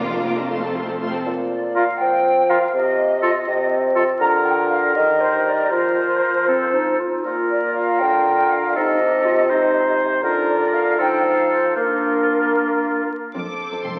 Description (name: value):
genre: classical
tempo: 80 BPM (dotted quarters)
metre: 6/8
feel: rubato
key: Bb major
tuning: A4 = 440 Hz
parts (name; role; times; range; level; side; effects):
- rich symphonic violin section; melody; 0.0-1.3, 13.4-14.0 s; A5 to D6; -35 LUFS; equal; none
- bright symphonic violin section; second line; 0.0-0.5, 13.3-14.0 s; C4 to C5; -32 LUFS; equal; none
- rich symphonic viola section; accompaniment; 0.0-1.2, 13.3-14.0 s; A3 to Bb4; -29 LUFS; equal; none
- clear studio double bass section; bass; 0.0-1.0, 13.3-13.9 s; F1; -39 LUFS; equal; none
- rich symphonic cello section; bass; 0.0-1.0, 13.3-14.0 s; F2; -34 LUFS; equal; none
- mellow bassoon; accompaniment; 1.3-13.1 s; Bb2 to Bb3; -23 LUFS; equal; none
- flute section; second line; 1.5-13.1 s; Bb4 to Bb5; -24 LUFS; equal; none
- clear oboe; second line; 1.8-13.1 s; F4 to C5; -25 LUFS; equal; none
- warm clarinet; second line; 1.8-13.1 s; C4 to G4; -27 LUFS; equal; none
room: wet scoring stage reverb, RT60 1.8 s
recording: very old 78 rpm record, vinyl crackle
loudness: -19 LUFS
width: mono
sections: 0.0-1.3 A section; 1.3-13.3 B section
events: none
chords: 0.5 F; 1.3 Bb5; 2.7 F7(no3)/C (rootless); 4.2 Bb/D; 4.9 Eb; 5.7 Fsus4; 7.2 Bb; 8.8 F7/C (rootless); 10.2 Bb/D; 11.0 F7; 11.8 Bb; 13.3 F